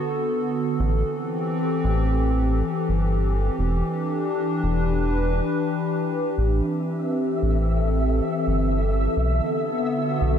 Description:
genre	IDM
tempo	86 BPM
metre	4/4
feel	straight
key	A dorian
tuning	A4 = 439 Hz
part	hollow soft pad	sustained chords	0.0-10.4 s	D3 to B4	-23 LUFS	left 1 dB	chorus
part	round analog bass	bass	0.8-10.4 s	E1 to B1	-22 LUFS	equal	none
part	flickering grainy texture	texture	6.8-10.4 s	E5	-30 LUFS	equal	built-in reverb
room	light reverb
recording	dark, warm production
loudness	-21 LUFS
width	side -8 dB against mid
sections	0.0-10.4 A section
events	none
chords	0.0 Bm7; 0.8 Am7; 3.6 Em7; 6.4 Am7; 9.2 Bm7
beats	0.10 | 0.80 1.50 2.19 2.89 | 3.59 4.29 4.98 5.68 | 6.38 7.08 7.77 8.47 | 9.17 9.87

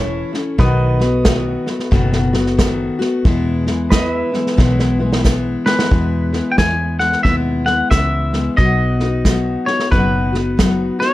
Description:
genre	honky-tonk and classic country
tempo	90 BPM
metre	4/4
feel	swing 63% on 8ths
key	E major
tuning	A4 = 442 Hz
part	picked steel-string acoustic guitar	accompaniment	0.0-11.1 s	E2 to F#4	-19 LUFS	left 3 dB	none
part	pedal steel guitar	sustained chords	0.0-5.9 s	A4 to E5	-25 LUFS	right 3 dB	none
part	fingered electric bass	bass	0.0-10.9 s	E1 to E2	-19 LUFS	equal	none
part	unplugged drum kit	drums	0.3-11.1 s	hi-hat, kick drum, snare drum	-18 LUFS	equal	none
part	twangy electric guitar	melody	5.7-11.1 s	B4 to G#5	-19 LUFS	left 1 dB	plate reverb, tape echo
room	moderate studio ambience, RT60 0.5 s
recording	dark, warm production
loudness	-14 LUFS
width	side -16 dB against mid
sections	0.0-5.9 A section; 5.9-11.1 B section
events	drum fill 4.6-5.9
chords	0.0 A; 0.6 B7; 3.2 E; 8.6 B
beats	| 0.58 1.25 1.92 2.58 | 3.25 3.92 4.58 5.25 | 5.91 6.58 7.25 7.92 | 8.58 9.25 9.92 10.59

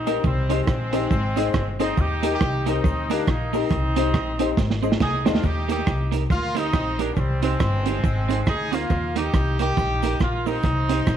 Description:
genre	ska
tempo	139 BPM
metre	4/4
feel	swing 59% on 8ths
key	Eb major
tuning	A4 = 442 Hz
part	clear horn section	melody	0.0-11.2 s	G3 to Ab4	-26 LUFS	equal	none
part	upright bass	bass	0.0-11.2 s	G1 to Eb2	-25 LUFS	left 1 dB	none
part	clean electric guitar	accompaniment	0.1-11.0 s	Bb3 to C5	-29 LUFS	right 10 dB	harmonic tremolo
part	dark upright piano	stabs	0.1-5.4 s	Eb4 to Eb5	-27 LUFS	left 12 dB	none
part	vintage drum kit	drums	0.1-11.2 s	hi-hat, kick drum, rim click, snare drum	-25 LUFS	right 2 dB	tape echo
part	cabasa	percussion	0.1-11.2 s	none	-54 LUFS	right 10 dB	none
room	light reverb, small room ambience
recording	1960s-style stereo with parts hard left and right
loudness	-20 LUFS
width	side -9 dB against mid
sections	0.0-5.4 A section; 5.4-11.2 A section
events	drum fill 4.6-5.4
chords	0.2 Cm; 1.1 Ab; 2.0 Eb; 3.7 Cm; 4.6 Ab; 5.4 Eb; 7.2 Cm; 8.0 Ab; 8.9 Eb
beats	| 0.24 0.68 1.11 1.54 | 1.97 2.41 2.84 3.27 | 3.71 4.14 4.57 5.00 | 5.44 5.87 6.30 6.74 | 7.17 7.60 8.04 8.47 | 8.90 9.34 9.77 10.20 | 10.64 11.07

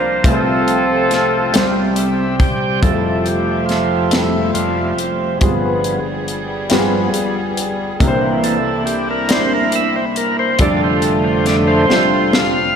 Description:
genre	slow gospel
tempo	46 BPM (dotted quarters)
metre	6/8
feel	straight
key	F major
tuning	A4 = 440 Hz
part	warm horn section	melody	0.0-1.9 s	C4 to C5	-17 LUFS	right 1 dB	ping-pong delay
part	warm grand piano	accompaniment	0.0-12.8 s	F1 to E5	-20 LUFS	left 1 dB	lush chorus
part	overdriven tonewheel organ	sustained chords	0.0-12.8 s	F2 to G5	-17 LUFS	right 1 dB	slow rotary speaker
part	tight funk drum kit	drums	0.2-12.5 s	hi-hat, kick drum, snare drum	-19 LUFS	left 1 dB	none
part	dark studio string section	sustained chords	2.8-12.8 s	G3 to E5	-24 LUFS	left 1 dB	none
room	wet plate reverb, RT60 2.8 s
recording	dreamy mix soaked in reverb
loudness	-14 LUFS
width	side -7 dB against mid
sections	0.0-2.8 A section; 2.8-12.8 B section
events	tonewheel organ fill 1.5-2.8; tonewheel organ solo 2.8-12.8; drum fill 11.9-12.8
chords	0.2 F/C; 1.5 C; 2.8 Fmaj9; 5.4 G7b9; 8.0 C9; 10.6 F69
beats	| 0.24 1.53 | 2.83 4.12 | 5.42 6.71 | 8.00 9.30 | 10.59 11.89

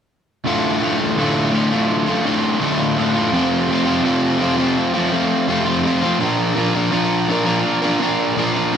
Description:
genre	rock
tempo	83 BPM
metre	4/4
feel	straight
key	D minor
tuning	A4 = 440 Hz
part	crunchy overdriven guitar	solo	0.4-8.8 s	D2 to Bb4	-16 LUFS	equal	slapback echo
room	wet studio reverb, RT60 0.6 s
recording	band playing live in one room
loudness	-16 LUFS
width	side -8 dB against mid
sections	0.5-8.8 A section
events	none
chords	0.5 Dm; 3.3 F; 6.2 Bb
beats	| 0.45 1.17 1.89 2.61 | 3.33 4.05 4.77 5.49 | 6.21 6.93 7.64 8.36

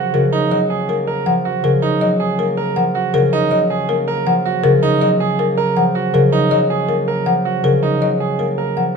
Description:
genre	classical, minimalist pattern music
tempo	160 BPM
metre	4/4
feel	straight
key	unclear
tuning	A4 = 440 Hz
part	concert harp	accompaniment	0.0-9.0 s	C#3 to A#3	-18 LUFS	equal	none
part	bright concert grand piano	arpeggios	0.0-8.8 s	Eb4 to A#4	-20 LUFS	right 9 dB	none
part	folk marimba with soft mallets	melody	0.1-9.0 s	A#4 to F#5	-19 LUFS	left 6 dB	none
room	wet recital hall reverb, RT60 1.6 s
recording	none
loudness	-14 LUFS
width	side -5 dB against mid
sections	0.0-9.0 A section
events	none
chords	0.0 F#maj9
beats	0.14 | 0.51 0.89 1.26 1.64 | 2.01 2.39 2.76 3.14 | 3.51 3.89 4.26 4.64 | 5.01 5.39 5.76 6.14 | 6.51 6.89 7.26 7.64 | 8.01 8.39 8.76

